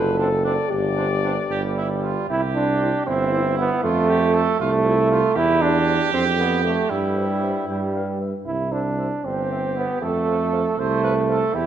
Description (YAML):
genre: classical, brass quintet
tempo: 78 BPM (dotted quarters)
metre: 6/8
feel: straight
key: C major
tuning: A4 = 440 Hz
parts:
  - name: mellow trumpet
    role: melody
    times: 0.0-11.4 s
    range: A4 to G5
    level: -33 LUFS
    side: left 5 dB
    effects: none
  - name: mellow French horn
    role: accompaniment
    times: 0.0-11.4 s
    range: E4 to C5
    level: -29 LUFS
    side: left 2 dB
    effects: none
  - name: clear tuba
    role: bass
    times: 0.0-11.7 s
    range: F#1 to G2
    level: -24 LUFS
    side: right 2 dB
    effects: none
  - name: clear trumpet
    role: second line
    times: 0.2-11.7 s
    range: D4 to C5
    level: -27 LUFS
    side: right 6 dB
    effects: none
  - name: brilliant trombone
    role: accompaniment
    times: 0.2-11.7 s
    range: G3 to E4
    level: -22 LUFS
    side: right 2 dB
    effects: none
room: moderate concert hall reverb, RT60 1.9 s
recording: none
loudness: -19 LUFS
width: side -10 dB against mid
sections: 0.0-2.3 A section; 2.3-11.7 B section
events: none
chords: 0.0 D7/F#; 0.7 Gsus4; 1.5 G5; 2.3 C; 3.8 F; 5.4 C/E; 6.1 Dm/F; 6.9 C/G; 7.7 G; 8.5 C; 10.0 F